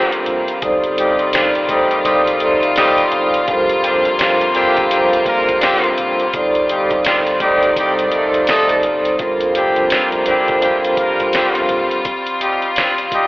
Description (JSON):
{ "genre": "hip hop, boom-bap hip-hop", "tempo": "84 BPM", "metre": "4/4", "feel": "swing 61% on 16ths", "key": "G minor", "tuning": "A4 = 440 Hz", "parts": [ { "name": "vibraphone with soft mallets", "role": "accompaniment", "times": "0.0-11.9 s", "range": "G3 to D5", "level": "-17 LUFS", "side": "right 1 dB", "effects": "cassette tape, high-pass filter, low-pass filter" }, { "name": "warm studio string section", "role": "sustained chords", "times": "0.0-13.3 s", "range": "C3 to D5", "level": "-19 LUFS", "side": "left 1 dB", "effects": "high-pass filter, low-pass filter" }, { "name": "warm horn section", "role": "stabs", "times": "0.0-13.3 s", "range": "G3 to Bb4", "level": "-18 LUFS", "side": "equal", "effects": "high-pass filter, low-pass filter, diffuse ambient delay" }, { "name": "lo-fi sampler-style drum kit", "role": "drums", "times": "0.1-13.3 s", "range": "hi-hat, kick drum, snare drum", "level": "-22 LUFS", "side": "equal", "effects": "vintage 12-bit sampler grit" }, { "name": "deep dub fingered electric bass", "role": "bass", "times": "0.3-11.9 s", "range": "F1 to C2", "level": "-36 LUFS", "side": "equal", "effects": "none" } ], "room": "wet plate reverb, RT60 2.5 s", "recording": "dreamy mix soaked in reverb, vinyl crackle, telephone sound", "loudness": "-13 LUFS", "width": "side -20 dB against mid", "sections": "0.0-13.3 A section", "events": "none", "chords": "0.0 Gm11; 0.6 F13/G; 3.5 Gm11; 6.3 F13/G; 9.2 Gm11; 12.1 F7sus2/G", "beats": "| 0.62 1.34 2.05 2.77 | 3.48 4.20 4.91 5.62 | 6.34 7.05 7.77 8.48 | 9.20 9.91 10.62 11.34 | 12.05 12.77" }